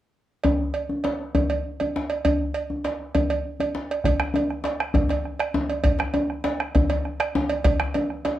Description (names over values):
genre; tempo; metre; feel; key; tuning
west african traditional, West African drum ensemble; 133 BPM (dotted quarters); 12/8; straight; none; none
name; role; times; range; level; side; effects
cowbell; percussion; 0.4-8.4 s; none; -27 LUFS; right 5 dB; none
djembe; percussion; 0.5-8.4 s; none; -24 LUFS; left 2 dB; none
bombo; percussion; 4.0-8.3 s; none; -24 LUFS; right 1 dB; none
room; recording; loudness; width
moderate studio reverb, RT60 0.6 s; worn, warbling old tape, cassette tape, warbly pitch drift; -22 LUFS; side -13 dB against mid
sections
0.4-4.0 A section; 4.0-8.4 B section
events
none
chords
none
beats
| 0.44 0.89 1.34 1.79 | 2.24 2.69 3.14 3.59 | 4.04 4.50 4.95 5.40 | 5.85 6.30 6.75 7.20 | 7.65 8.10